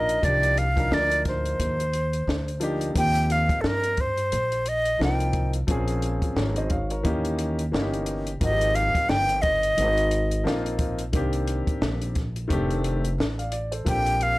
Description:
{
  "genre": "hip hop, jazz-hop",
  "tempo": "88 BPM",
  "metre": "4/4",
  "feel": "swing 58% on 16ths",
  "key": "unclear",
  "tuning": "A4 = 441 Hz",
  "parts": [
    { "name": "breathy silver concert flute", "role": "melody", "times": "0.0-14.4 s", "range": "A4 to G5", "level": "-23 LUFS", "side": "equal", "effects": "none" },
    { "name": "dark grand piano", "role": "accompaniment", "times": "0.0-14.4 s", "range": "Eb3 to F5", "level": "-29 LUFS", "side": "left 1 dB", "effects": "none" },
    { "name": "upright bass", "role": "bass", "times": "0.0-14.4 s", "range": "F1 to G2", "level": "-27 LUFS", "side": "equal", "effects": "tube saturation" },
    { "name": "compact cocktail drum kit", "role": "drums", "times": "0.1-14.4 s", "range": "hi-hat, kick drum, snare drum", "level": "-28 LUFS", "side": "equal", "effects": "none" }
  ],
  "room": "little or no reverb",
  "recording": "dry, gritty hardware recording",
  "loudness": "-22 LUFS",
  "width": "side -20 dB against mid",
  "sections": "0.0-3.0 A section; 3.0-14.4 B section",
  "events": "none",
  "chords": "0.0 Cm11; 3.0 Eb69; 5.7 Bbm9; 7.0 Eb7b9; 8.4 Abmaj13; 11.1 Cm9; 12.5 F13; 13.9 Bb69",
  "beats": "| 0.23 0.91 1.59 2.27 | 2.96 3.64 4.32 5.00 | 5.68 6.36 7.05 7.73 | 8.41 9.09 9.77 10.46 | 11.14 11.82 12.50 13.18 | 13.86"
}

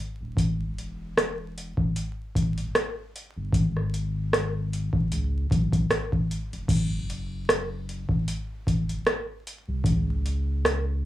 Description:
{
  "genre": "lo-fi hip hop",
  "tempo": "76 BPM",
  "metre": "4/4",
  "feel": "swing 57% on 16ths",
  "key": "unclear",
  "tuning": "A4 = 440 Hz",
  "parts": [
    { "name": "booming analog drum machine", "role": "drums", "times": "0.0-10.9 s", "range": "crash cymbal, hi-hat, kick drum, rim click", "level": "-25 LUFS", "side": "equal", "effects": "none" },
    { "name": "warm sub bass", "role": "bass", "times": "0.2-11.1 s", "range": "D#1 to C#2", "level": "-30 LUFS", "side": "equal", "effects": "none" }
  ],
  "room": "little or no reverb",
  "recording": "dry, gritty hardware recording, vinyl crackle, studio ambience",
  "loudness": "-24 LUFS",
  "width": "side -14 dB against mid",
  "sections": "0.0-6.7 A section; 6.7-11.1 A section",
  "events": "none",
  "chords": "none",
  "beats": "| 0.37 1.16 1.95 2.74 | 3.53 4.32 5.11 5.90 | 6.69 7.48 8.27 9.06 | 9.85 10.64"
}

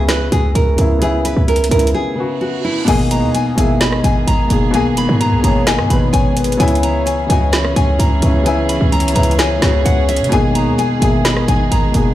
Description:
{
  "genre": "hip hop, trap",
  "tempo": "129 BPM",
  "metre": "4/4",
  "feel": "half-time",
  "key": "G# minor",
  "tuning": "A4 = 440 Hz",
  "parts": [
    { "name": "nylon-string guitar", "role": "melody", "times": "0.0-12.1 s", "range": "E4 to B5", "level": "-20 LUFS", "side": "equal", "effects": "digital delay" },
    { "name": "dark grand piano", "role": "accompaniment", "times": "0.0-12.1 s", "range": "A#2 to B4", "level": "-18 LUFS", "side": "left 2 dB", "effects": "none" },
    { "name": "short 808-style bass", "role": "bass", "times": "0.0-12.1 s", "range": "F#1 to C#3", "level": "-16 LUFS", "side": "equal", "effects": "none" },
    { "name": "trap drum kit", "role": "drums", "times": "0.1-12.1 s", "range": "crash cymbal, hi-hat, rim click, snare drum", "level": "-21 LUFS", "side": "right 1 dB", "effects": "none" },
    { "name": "reverse cymbal", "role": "sound effects", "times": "2.1-2.9 s", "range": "none", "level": "-29 LUFS", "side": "right 8 dB", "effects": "none" },
    { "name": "soft octave-layered synth lead", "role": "second line", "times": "2.9-12.1 s", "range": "B4 to E5", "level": "-23 LUFS", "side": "equal", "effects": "chorus, phaser, digital delay" },
    { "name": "warm chamber string section", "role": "sustained chords", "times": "2.9-12.1 s", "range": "D#3 to G#4", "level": "-22 LUFS", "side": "right 2 dB", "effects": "none" }
  ],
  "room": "light reverb, small room ambience",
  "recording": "played on a big sound system in a bare room, large studio reverb",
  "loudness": "-12 LUFS",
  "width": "side -13 dB against mid",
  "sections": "0.0-2.9 A section; 2.9-12.1 B section",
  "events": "break 1.9-2.9; reverse cymbal 2.1-2.9",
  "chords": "0.0 C#m7; 2.9 G#madd9; 6.6 C#m7; 10.3 G#madd9",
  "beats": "0.09 0.55 | 1.02 1.48 1.95 2.41 | 2.88 3.34 3.81 4.27 | 4.74 5.20 5.67 6.13 | 6.60 7.06 7.53 7.99 | 8.46 8.92 9.39 9.85 | 10.32 10.78 11.25 11.71"
}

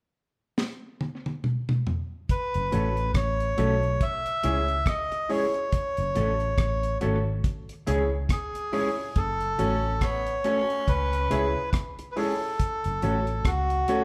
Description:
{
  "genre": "roots reggae",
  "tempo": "70 BPM",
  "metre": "4/4",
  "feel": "swing 58% on 16ths",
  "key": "F# minor",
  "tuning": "A4 = 440 Hz",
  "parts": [
    { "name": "deep reggae drum kit", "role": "drums", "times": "0.6-14.0 s", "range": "hi-hat, kick drum, rim click, snare drum, toms", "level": "-31 LUFS", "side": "equal", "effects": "none" },
    { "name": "melodica", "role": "melody", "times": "2.3-14.0 s", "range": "F#4 to E5", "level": "-30 LUFS", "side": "equal", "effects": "tube saturation" },
    { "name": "vintage muted fingered electric bass", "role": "bass", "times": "2.6-13.8 s", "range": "F#1 to C#2", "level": "-31 LUFS", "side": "equal", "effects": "none" },
    { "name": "mellow electric guitar", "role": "accompaniment", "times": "2.7-14.0 s", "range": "G#3 to A4", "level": "-34 LUFS", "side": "equal", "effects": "none" },
    { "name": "dark baby grand piano", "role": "stabs", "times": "2.7-14.0 s", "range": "E4 to C#5", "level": "-35 LUFS", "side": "equal", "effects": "none" },
    { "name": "growling tenor saxophone", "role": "second line", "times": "9.6-11.5 s", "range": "B3 to E4", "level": "-37 LUFS", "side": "equal", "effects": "none" }
  ],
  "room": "moderate large studio reverb, RT60 1.2 s",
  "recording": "band playing live in one room",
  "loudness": "-27 LUFS",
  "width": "mono",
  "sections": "0.0-2.3 A section; 2.3-9.2 B section; 9.2-14.0 C section",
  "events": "drum fill 0.6-2.3",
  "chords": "0.0 N.C.; 2.3 F#m; 4.0 C#m; 5.7 F#m; 7.4 C#m; 9.2 F#m; 10.9 C#m; 12.6 F#m",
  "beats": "0.57 1.43 | 2.29 3.15 4.01 4.87 | 5.72 6.58 7.44 8.30 | 9.16 10.02 10.88 11.73 | 12.59 13.45"
}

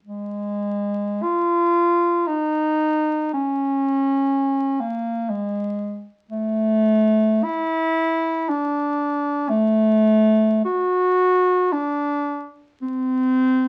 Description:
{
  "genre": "classical, free, expressive piece for unaccompanied bass clarinet",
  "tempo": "47-62 BPM",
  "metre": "3/4",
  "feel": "rubato",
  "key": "unclear",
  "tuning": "A4 = 435 Hz",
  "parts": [
    { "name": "mellow bass clarinet", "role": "solo", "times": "0.0-13.7 s", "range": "Ab3 to F#4", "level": "-21 LUFS", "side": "equal", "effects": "none" }
  ],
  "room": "moderate studio reverb, RT60 0.6 s",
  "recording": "very old 78 rpm record, vinyl crackle",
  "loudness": "-21 LUFS",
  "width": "mono",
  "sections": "0.0-13.7 A section",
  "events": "none",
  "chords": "none",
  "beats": "| 0.06 1.25 2.30 | 3.34 4.32 5.31 | 6.33 7.45 8.49 | 9.49 10.64 11.72 | 12.83"
}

